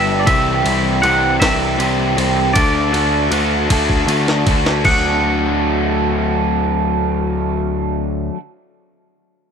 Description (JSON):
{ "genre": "indie rock", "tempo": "52 BPM (dotted quarters)", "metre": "6/8", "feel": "straight", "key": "D mixolydian", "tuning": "A4 = 437 Hz", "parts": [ { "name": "twangy electric guitar", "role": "melody", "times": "0.0-8.3 s", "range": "D5 to F#5", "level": "-19 LUFS", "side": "equal", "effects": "slapback echo" }, { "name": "overdriven electric guitar", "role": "riff", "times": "0.0-8.4 s", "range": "G2 to G4", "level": "-20 LUFS", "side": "right 15 dB", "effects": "lush chorus, slapback echo" }, { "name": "overdriven semi-hollow guitar", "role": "riff", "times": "0.0-8.4 s", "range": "C3 to C5", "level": "-20 LUFS", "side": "left 15 dB", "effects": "none" }, { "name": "modern bright picked electric bass", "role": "bass", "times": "0.0-8.3 s", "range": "G1 to D2", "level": "-20 LUFS", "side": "equal", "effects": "none" }, { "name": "jungle sampler-style drum kit", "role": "drums", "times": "0.3-5.0 s", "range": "crash cymbal, kick drum, ride cymbal, snare drum", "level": "-20 LUFS", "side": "equal", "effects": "none" } ], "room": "little or no reverb", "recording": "1960s-style stereo with parts hard left and right", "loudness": "-14 LUFS", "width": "side -6 dB against mid", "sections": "0.0-4.8 A section; 4.8-7.1 B section", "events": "drum fill 3.7-4.8", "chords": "0.3 C; 2.6 D", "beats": "| 0.27 1.41 | 2.56 3.70 | 4.84 5.99" }